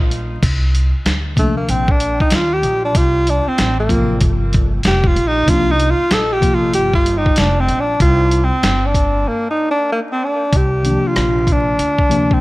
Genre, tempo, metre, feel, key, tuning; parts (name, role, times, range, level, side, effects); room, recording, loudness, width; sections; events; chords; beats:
hip hop, jazz-hop; 95 BPM; 4/4; swing 60% on 16ths; C dorian; A4 = 436 Hz
upright bass; bass; 0.0-12.3 s; F1 to Eb2; -19 LUFS; equal
dusty soul sampler-style drum kit; drums; 0.1-12.4 s; crash cymbal, hi-hat, kick drum, rim click, snare drum; -17 LUFS; equal
breathy tenor saxophone; melody; 1.4-12.4 s; A3 to A4; -17 LUFS; equal; diffuse ambient delay
mellow tine electric piano; accompaniment; 1.4-6.9, 10.8-12.4 s; C3 to F4; -20 LUFS; left 2 dB; medium stereo tremolo
light reverb, digital ambience; vinyl crackle; -13 LUFS; side -20 dB against mid
0.4-10.5 A section; 10.5-12.4 B section
tenor saxophone solo 0.4-10.5; break 9.3-10.5
0.4 C9sus4
| 0.42 1.06 1.69 2.32 | 2.95 3.58 4.21 4.85 | 5.48 6.11 6.74 7.37 | 8.00 8.64 9.27 9.90 | 10.53 11.16 11.79